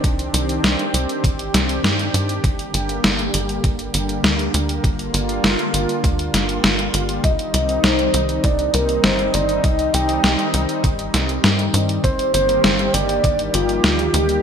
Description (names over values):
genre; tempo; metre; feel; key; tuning
synthwave; 100 BPM; 4/4; straight; C minor; A4 = 444 Hz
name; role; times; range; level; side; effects
lush unison pad; sustained chords; 0.0-14.4 s; D3 to G4; -23 LUFS; equal; chorus, sidechain pumping
tight sequencer bass; bass; 0.0-14.4 s; G1 to G2; -23 LUFS; equal; none
detuned 8-bit digital drum machine; drums; 0.0-14.4 s; hi-hat, snare drum; -20 LUFS; equal; none
electronic kick drum; drums; 0.0-13.4 s; none; -20 LUFS; equal; none
soft octave-layered synth lead; melody; 7.2-14.4 s; F4 to G5; -20 LUFS; right 1 dB; chorus, ping-pong delay
room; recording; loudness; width
moderate plate reverb, RT60 1.6 s, digital ambience; bright 1980s-style digital production; -16 LUFS; side -7 dB against mid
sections
0.0-14.4 A section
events
none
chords
0.0 Cmadd9; 2.4 Gm; 7.2 Cm; 12.0 Gm